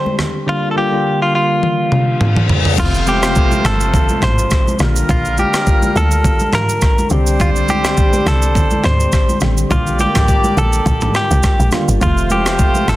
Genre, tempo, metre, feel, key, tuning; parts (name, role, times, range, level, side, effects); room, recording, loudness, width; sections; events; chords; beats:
afrobeats; 104 BPM; 4/4; swing 55% on 16ths; F major; A4 = 440 Hz
direct-recorded clean electric guitar; melody; 0.0-13.0 s; F4 to C5; -19 LUFS; equal; low-pass filter, digital delay
soft electric-piano-like synth keys; accompaniment; 0.0-13.0 s; C3 to G4; -21 LUFS; left 1 dB; chorus, low-pass filter
congas; percussion; 0.1-13.0 s; -24 LUFS; right 1 dB
breakbeat sampler-style drum kit; drums; 0.2-13.0 s; crash cymbal, kick drum, rim click, shaker, toms; -16 LUFS; equal
reverse cymbal and downlifter; sound effects; 2.0-7.4 s; -24 LUFS; left 3 dB
clear horn section; second line; 2.8-13.0 s; G3 to D5; -22 LUFS; right 1 dB
woody log drum bass; bass; 2.8-13.0 s; F1 to D2; -16 LUFS; equal
light reverb, digital ambience; dense, heavily limited modern master; -12 LUFS; side -16 dB against mid
0.0-2.8 A section; 2.8-13.0 B section
drum fill 1.6-2.8; reverse cymbal 2.0-2.8
0.5 Bb6; 2.8 F; 4.8 Bb6; 7.1 Csus2; 9.7 Bb6; 12.0 F
| 0.48 1.05 1.63 2.21 | 2.78 3.36 3.94 4.51 | 5.09 5.67 6.25 6.82 | 7.40 7.98 8.55 9.13 | 9.71 10.28 10.86 11.44 | 12.02 12.59